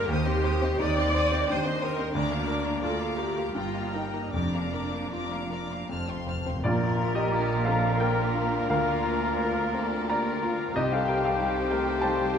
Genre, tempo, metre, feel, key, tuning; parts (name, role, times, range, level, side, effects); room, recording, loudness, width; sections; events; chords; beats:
classical, romantic movement for piano and orchestra; 74-96 BPM; 3/4; rubato; Bb major; A4 = 439 Hz
clear grand piano; melody; 0.0-12.4 s; Bb1 to Bb5; -29 LUFS; left 1 dB
rich studio violin section; melody; 0.0-12.4 s; F4 to F6; -39 LUFS; left 5 dB
warm studio violin section; second line; 0.0-12.4 s; F4 to D6; -37 LUFS; left 4 dB
rich studio viola section; accompaniment; 0.0-12.4 s; G3 to D5; -32 LUFS; equal
rich studio cello section; bass; 0.1-12.4 s; C2 to Bb2; -36 LUFS; right 3 dB
rich studio double bass section; bass; 0.1-12.4 s; F1 to Eb2; -34 LUFS; right 3 dB
timpani; percussion; 4.3-7.6 s; F2 to Bb2; -34 LUFS; right 1 dB
bright clarinet; second line; 6.6-12.4 s; F4 to G4; -37 LUFS; left 1 dB
clear oboe; second line; 6.6-12.4 s; Bb4 to C5; -35 LUFS; right 2 dB
small flute group; second line; 6.6-12.4 s; G5 to Bb5; -33 LUFS; left 4 dB
dark French horn section; sustained chords; 6.7-12.4 s; Bb3 to Bb4; -33 LUFS; left 5 dB
wet scoring stage reverb, RT60 1.7 s; minimal, uncompressed stereo recording, faint mains hum; -24 LUFS; side -7 dB against mid
0.0-6.6 A section; 6.6-12.4 B section
timpani fill 5.9-6.6
0.1 Cm/Eb; 2.1 Bb/D; 3.5 Eb/G; 4.3 Bb/F; 5.9 F; 6.6 Bb; 8.7 Bb/D; 10.8 Cm
| 0.09 0.80 1.49 | 2.15 2.83 3.55 | 4.33 5.12 5.90 | 6.64 7.33 8.01 | 8.70 9.38 10.09 | 10.75 11.39 12.02